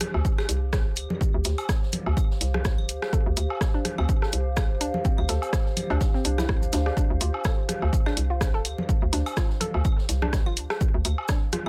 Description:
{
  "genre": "minimal techno",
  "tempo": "125 BPM",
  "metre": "4/4",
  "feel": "swing 56% on 16ths",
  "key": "D minor",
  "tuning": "A4 = 440 Hz",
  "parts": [
    { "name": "garage drum kit", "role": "drums", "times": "0.0-11.6 s", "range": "hi-hat, rim click", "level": "-32 LUFS", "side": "equal", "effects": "none" },
    { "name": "open jazz drum kit", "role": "drums", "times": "0.0-11.7 s", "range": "hi-hat, shaker, snare drum", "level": "-43 LUFS", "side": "equal", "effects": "sidechain pumping on hats, high-pass filter on hats, high-pass filter on snare, sidechain pumping on perc, high-pass filter on perc, high-pass filter on room" },
    { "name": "electronic rim click, congas, woodblock and claves", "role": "percussion", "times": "0.0-11.7 s", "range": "none", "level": "-35 LUFS", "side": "equal", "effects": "overdrive, tape echo" },
    { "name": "warbly tape-like pad", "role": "texture", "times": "0.0-11.7 s", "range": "D4 to F5", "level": "-38 LUFS", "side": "equal", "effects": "chorus, built-in reverb, sidechain pumping" },
    { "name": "hollow knocking FM bass", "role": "bass", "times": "0.1-11.7 s", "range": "D1 to D2", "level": "-28 LUFS", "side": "equal", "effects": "tube saturation, sidechain pumping" },
    { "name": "electronic kick drum", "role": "drums", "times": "0.2-11.4 s", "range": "none", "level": "-26 LUFS", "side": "equal", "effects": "none" },
    { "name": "hollow square pluck", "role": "riff", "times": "3.1-11.6 s", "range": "C4 to D5", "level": "-36 LUFS", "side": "equal", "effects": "chorus, phaser, sidechain pumping, digital delay" }
  ],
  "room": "little or no reverb",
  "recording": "none",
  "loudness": "-25 LUFS",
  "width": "mono",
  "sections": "0.0-11.7 A section",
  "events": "none",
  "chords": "0.0 Dm7",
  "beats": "0.25 0.73 | 1.21 1.69 2.17 2.65 | 3.13 3.61 4.09 4.57 | 5.05 5.53 6.01 6.49 | 6.97 7.45 7.93 8.41 | 8.89 9.37 9.85 10.33 | 10.81 11.29"
}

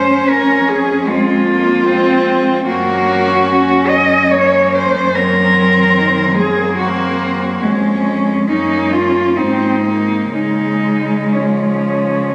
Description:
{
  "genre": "classical, lyrical piece for cello ensemble",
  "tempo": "59-78 BPM",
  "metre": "3/4",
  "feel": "rubato",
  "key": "Db major",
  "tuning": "A4 = 442 Hz",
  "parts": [
    { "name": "dark cello", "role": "melody", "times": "0.0-12.3 s", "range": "Db4 to Eb5", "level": "-17 LUFS", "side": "equal", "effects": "none" },
    { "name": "rich cello", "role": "second line", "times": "0.0-12.3 s", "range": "F3 to Db4", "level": "-24 LUFS", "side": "equal", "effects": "none" },
    { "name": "warm cello", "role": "accompaniment", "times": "0.0-12.3 s", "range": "Eb3 to Db4", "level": "-19 LUFS", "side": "equal", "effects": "none" },
    { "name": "warm cello", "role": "bass", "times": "0.0-12.3 s", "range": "F2 to Db3", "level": "-24 LUFS", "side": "equal", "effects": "none" }
  ],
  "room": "wet concert hall reverb, RT60 2.6 s",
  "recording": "recorded on a phone in the room, club ambience, compression",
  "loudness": "-14 LUFS",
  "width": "mono",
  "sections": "0.0-12.3 A section",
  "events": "none",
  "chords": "0.3 Db/F; 2.7 Gb; 5.1 Ab9/Gb (rootless); 7.6 Db/F; 8.5 Ebm7/Gb; 9.4 Abadd9; 10.3 Db",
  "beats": "| 0.29 1.07 1.87 | 2.66 3.47 4.32 | 5.14 5.96 6.79 | 7.62 8.48 9.37 | 10.33 11.33 12.31"
}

